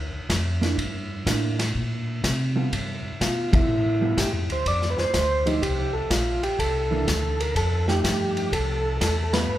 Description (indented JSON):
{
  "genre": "soul jazz organ trio",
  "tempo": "124 BPM",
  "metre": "4/4",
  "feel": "swing 67% on 8ths",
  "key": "C mixolydian",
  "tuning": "A4 = 441 Hz",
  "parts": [
    { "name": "mellow tonewheel organ", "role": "bass", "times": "0.0-9.6 s", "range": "Bb1 to C3", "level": "-26 LUFS", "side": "equal", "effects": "overdrive, chorus vibrato, slow rotary speaker" },
    { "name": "vintage drum kit", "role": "drums", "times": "0.3-9.4 s", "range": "hi-hat, kick drum, ride cymbal, snare drum", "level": "-27 LUFS", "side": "equal", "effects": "none" },
    { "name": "hollow-body jazz guitar", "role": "accompaniment", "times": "0.6-9.5 s", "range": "E3 to A4", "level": "-30 LUFS", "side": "right 3 dB", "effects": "none" },
    { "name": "percussive tonewheel organ", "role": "melody", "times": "3.2-9.6 s", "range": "Eb4 to D5", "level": "-25 LUFS", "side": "equal", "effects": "slow rotary speaker" }
  ],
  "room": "moderate recital hall reverb, RT60 1.7 s",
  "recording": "recorded in a church or concert hall",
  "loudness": "-22 LUFS",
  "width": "side -13 dB against mid",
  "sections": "0.0-9.6 A section",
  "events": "band accent 3.4, 9.2",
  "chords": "0.0 C9; 2.7 G9; 4.7 Fsus2; 6.6 C9; 7.6 F9; 8.5 C"
}